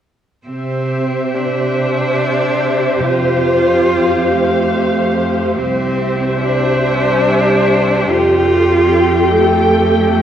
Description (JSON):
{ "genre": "cinematic, emotional film score for orchestra", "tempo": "47 BPM (dotted quarters)", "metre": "6/8", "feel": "rubato", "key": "C major", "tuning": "A4 = 439 Hz", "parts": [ { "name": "rich cello", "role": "melody", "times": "0.5-10.2 s", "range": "A3 to F4", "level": "-17 LUFS", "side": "equal", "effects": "none" }, { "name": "rich symphonic violin section", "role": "melody", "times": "0.5-10.2 s", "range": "E5 to G5", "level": "-22 LUFS", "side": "left 3 dB", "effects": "none" }, { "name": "warm symphonic viola section", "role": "accompaniment", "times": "0.5-10.2 s", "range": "G4 to C5", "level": "-16 LUFS", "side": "right 1 dB", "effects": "none" }, { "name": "warm chamber cello section", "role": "bass", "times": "0.5-10.2 s", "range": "C2 to C3", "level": "-20 LUFS", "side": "right 1 dB", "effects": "none" } ], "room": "wet church reverb, RT60 2.8 s", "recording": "worn, warbling old tape, cassette tape, warbly pitch drift", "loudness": "-12 LUFS", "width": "side -9 dB against mid", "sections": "0.5-10.2 A section", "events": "none", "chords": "0.5 Cadd9; 3.1 Fadd9; 5.6 Cadd9; 8.1 Fadd9", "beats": "| 0.48 1.78 | 3.05 4.33 | 5.60 6.86 | 8.12 9.35" }